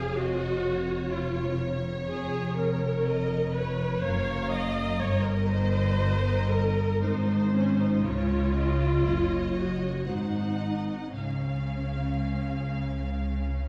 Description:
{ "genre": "classical, slow romantic movement for string orchestra", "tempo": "53-64 BPM", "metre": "3/4", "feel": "rubato", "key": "Db major", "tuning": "A4 = 436 Hz", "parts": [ { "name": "warm symphonic violin section", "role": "melody", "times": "0.0-13.7 s", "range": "C5 to Gb5", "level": "-42 LUFS", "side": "equal", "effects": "none" }, { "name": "rich symphonic violin section", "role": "second line", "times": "0.0-13.7 s", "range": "Db4 to F5", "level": "-42 LUFS", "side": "equal", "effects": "none" }, { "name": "warm symphonic viola section", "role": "accompaniment", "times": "0.0-13.7 s", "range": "Db4 to Eb5", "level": "-33 LUFS", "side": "equal", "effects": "none" }, { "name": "bright chamber double bass section", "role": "bass", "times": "0.0-13.7 s", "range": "F1 to Db2", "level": "-32 LUFS", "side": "equal", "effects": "none" }, { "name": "rich symphonic cello section", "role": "bass", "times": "0.0-13.7 s", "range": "F2 to Db3", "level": "-32 LUFS", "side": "equal", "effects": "none" } ], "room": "wet concert hall reverb, RT60 1.7 s", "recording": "heard from further back in the room, vinyl crackle", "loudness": "-28 LUFS", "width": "mono", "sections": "0.0-13.7 A section", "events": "none", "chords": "0.0 Db/F; 4.0 Gbmaj7; 5.0 Eb/G; 7.0 Ab; 8.0 Db; 9.0 Ebm/Gb; 10.1 Ab7; 11.2 Db" }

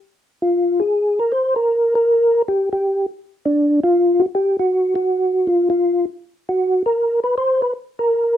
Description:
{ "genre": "jazz", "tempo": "159 BPM", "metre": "4/4", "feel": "swing 64% on 8ths", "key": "unclear", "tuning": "A4 = 439 Hz", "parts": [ { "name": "percussive tonewheel organ", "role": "solo", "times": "0.4-8.4 s", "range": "D4 to C5", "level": "-15 LUFS", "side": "equal", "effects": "slow rotary speaker, chorus vibrato" } ], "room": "light reverb", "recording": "dark, warm production", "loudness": "-16 LUFS", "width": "side -11 dB against mid", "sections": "0.2-8.4 A section", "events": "none", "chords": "none" }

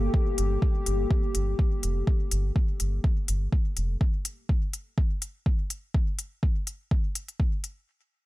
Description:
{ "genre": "dub techno", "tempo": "124 BPM", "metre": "4/4", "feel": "swing 54% on 16ths", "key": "G minor", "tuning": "A4 = 441 Hz", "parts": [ { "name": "dark analog pad", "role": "sustained chords", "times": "0.0-4.0 s", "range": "Bb3 to A4", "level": "-33 LUFS", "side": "left 2 dB", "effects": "chorus, sidechain pumping" }, { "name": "round analog bass", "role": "bass", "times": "0.0-4.0 s", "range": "F1 to G1", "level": "-26 LUFS", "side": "equal", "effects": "sidechain pumping" }, { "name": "electronic kick drum", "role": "drums", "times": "0.1-7.5 s", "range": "none", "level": "-24 LUFS", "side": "equal", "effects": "none" }, { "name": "electronic hi-hat", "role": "drums", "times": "0.4-7.7 s", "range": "none", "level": "-32 LUFS", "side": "left 2 dB", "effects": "none" } ], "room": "little or no reverb", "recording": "none", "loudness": "-25 LUFS", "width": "side -18 dB against mid", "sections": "0.0-7.9 A section", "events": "none", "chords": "0.0 Gmadd9" }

